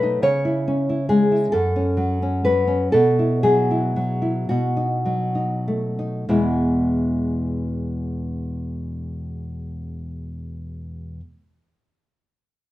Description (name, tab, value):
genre	romantic piece for solo classical guitar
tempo	31-48 BPM (dotted quarters)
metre	6/8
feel	rubato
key	E major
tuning	A4 = 440 Hz
part	nylon-string guitar	solo	0.0-11.2 s	E2 to C#5	-20 LUFS	equal	none
room	moderate large studio reverb, RT60 0.9 s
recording	band playing live in one room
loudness	-19 LUFS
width	side -15 dB against mid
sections	0.0-6.3 A section; 6.3-9.8 B section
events	slowing down 0.0-6.3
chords	0.2 C#m; 1.5 F#m; 2.9 Bsus4; 4.5 B7; 6.3 E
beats	| 0.22 1.50 | 2.90 4.47 | 6.27 8.04